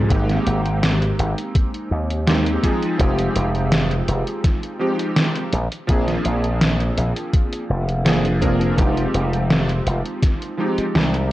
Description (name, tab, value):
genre	vaporwave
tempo	83 BPM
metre	4/4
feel	straight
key	F dorian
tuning	A4 = 440 Hz
part	clear electric grand piano	accompaniment	0.0-11.3 s	F3 to Bb4	-23 LUFS	right 1 dB	ensemble chorus, tape echo
part	slap bass with an envelope filter	bass	0.0-11.3 s	F1 to Eb2	-21 LUFS	equal	none
part	electronic kick drum	drums	0.1-10.4 s	none	-18 LUFS	equal	overdrive, vintage 12-bit sampler grit
part	gated 80s digital drum machine	drums	0.1-11.3 s	hi-hat, snare drum	-22 LUFS	equal	gated reverb, gated reverb snare, vintage 12-bit sampler grit
room	light reverb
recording	dry, gritty hardware recording, cassette tape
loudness	-17 LUFS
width	side -16 dB against mid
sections	0.0-11.3 A section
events	none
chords	0.1 Abmaj7; 2.6 Fm7; 5.5 Bb7; 8.8 Fm7